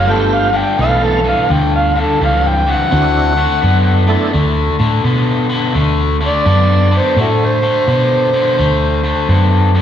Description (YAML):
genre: electric blues shuffle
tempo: 85 BPM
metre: 4/4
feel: swing 65% on 8ths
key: D mixolydian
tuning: A4 = 441 Hz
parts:
  - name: overdriven harmonica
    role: melody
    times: 0.0-9.5 s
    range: E4 to G5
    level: -16 LUFS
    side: right 1 dB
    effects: slapback echo
  - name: overdriven semi-hollow guitar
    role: riff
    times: 0.0-9.8 s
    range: G2 to B3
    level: -17 LUFS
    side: left 4 dB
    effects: slapback echo
  - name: hollow-body short-scale fingered electric bass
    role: bass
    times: 0.0-9.8 s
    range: G1 to B2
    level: -15 LUFS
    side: equal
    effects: none
  - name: tonewheel organ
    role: accompaniment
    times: 0.1-4.3 s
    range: A3 to F5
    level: -20 LUFS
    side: right 6 dB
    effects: slow rotary speaker, overdrive, chorus vibrato, slapback echo
room: light reverb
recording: live gig heard through the venue's PA, recital hall reverb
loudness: -11 LUFS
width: side -9 dB against mid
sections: 0.0-5.8 A section; 5.8-9.8 A section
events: none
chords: 0.1 G9; 2.9 D9; 5.8 D7